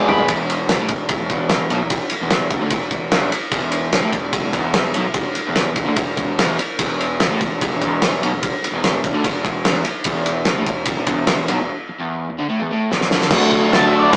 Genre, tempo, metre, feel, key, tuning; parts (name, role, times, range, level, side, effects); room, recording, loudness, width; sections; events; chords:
garage rock duo or trio; 147 BPM; 4/4; straight; E major; A4 = 440 Hz
octave-fuzz lead guitar; melody; 0.0-0.3, 13.7-14.2 s; B4 to B5; -21 LUFS; equal; distortion
crunchy overdriven guitar; riff; 0.0-14.2 s; E2 to G#4; -25 LUFS; equal
fuzz picked electric bass; bass; 0.0-14.2 s; E1 to D2; -26 LUFS; equal; overdrive
cloth-damped thuddy drum kit; drums; 0.1-14.2 s; crash cymbal, kick drum, ride cymbal, snare drum, toms; -21 LUFS; equal
light reverb; rough rehearsal-room recording, warm saturation, small speaker sound; -19 LUFS; mono
0.3-13.3 A section
drum fill 0.0, 12.9-13.3
0.3 E5; 13.3 D